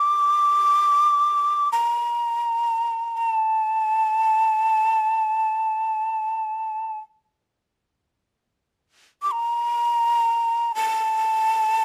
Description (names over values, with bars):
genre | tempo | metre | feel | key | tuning
japanese traditional, Japanese chamber music | free time | none | none | unclear | A4 = 440 Hz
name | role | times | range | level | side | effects
breathy mellow shakuhachi | solo | 0.0-11.8 s | A5 to D6 | -22 LUFS | equal | none
room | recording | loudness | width
light reverb | close, detailed microphones | -22 LUFS | mono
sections
0.0-11.8 A section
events
none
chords
none